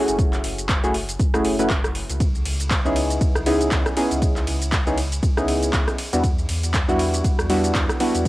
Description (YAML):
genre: deep house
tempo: 119 BPM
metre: 4/4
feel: swing 57% on 16ths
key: unclear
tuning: A4 = 438 Hz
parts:
  - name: deep mellow chord stab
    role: stabs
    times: 0.0-8.3 s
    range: G3 to B4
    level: -22 LUFS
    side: equal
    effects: chorus, sidechain pumping, cassette tape, tape echo
  - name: sub bass with octave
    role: bass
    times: 0.1-8.3 s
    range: F#1 to E2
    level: -26 LUFS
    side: equal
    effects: sidechain pumping
  - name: deep house drum kit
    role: drums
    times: 0.1-8.3 s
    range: handclaps, hi-hat, ride cymbal, rim click, shaker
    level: -26 LUFS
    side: equal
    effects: overdrive, small room ambience, cassette tape
  - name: electronic kick drum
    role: drums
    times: 0.2-8.3 s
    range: none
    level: -22 LUFS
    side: equal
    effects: overdrive, small room ambience, cassette tape
room: light reverb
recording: home recording on cassette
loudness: -18 LUFS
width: side -18 dB against mid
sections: 0.0-8.3 A section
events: none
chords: 0.0 F#m9; 2.2 C#m9; 6.0 Em9